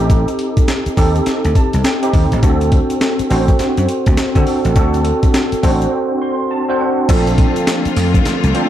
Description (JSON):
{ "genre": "R&B, new jack swing", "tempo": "103 BPM", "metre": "4/4", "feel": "swing 62% on 16ths", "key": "unclear", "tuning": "A4 = 444 Hz", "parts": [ { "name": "tine electric piano", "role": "accompaniment", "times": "0.0-8.7 s", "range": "C4 to C6", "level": "-16 LUFS", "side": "right 1 dB", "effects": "ensemble chorus" }, { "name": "vintage slap bass", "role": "bass", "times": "0.0-8.5 s", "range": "A1 to D3", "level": "-16 LUFS", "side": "equal", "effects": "tube saturation" }, { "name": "breakbeat sampler-style drum kit", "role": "drums", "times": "0.1-8.7 s", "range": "crash cymbal, hi-hat, kick drum, snare drum, tambourine", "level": "-16 LUFS", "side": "equal", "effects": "none" }, { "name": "tube shaker", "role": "percussion", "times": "0.1-8.5 s", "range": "none", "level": "-39 LUFS", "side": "left 17 dB", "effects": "none" }, { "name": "bright studio string section", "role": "sustained chords", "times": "7.1-8.7 s", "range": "D3 to F4", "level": "-20 LUFS", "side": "left 5 dB", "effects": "none" } ], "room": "light reverb", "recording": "dark, warm production", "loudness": "-12 LUFS", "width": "side -11 dB against mid", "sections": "0.0-7.1 A section; 7.1-8.7 B section", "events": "tine electric piano fill 1.3-2.4, 5.9-7.1; break 5.9-7.1", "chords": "0.0 Am7b5; 2.4 D7; 7.1 Bbmaj7" }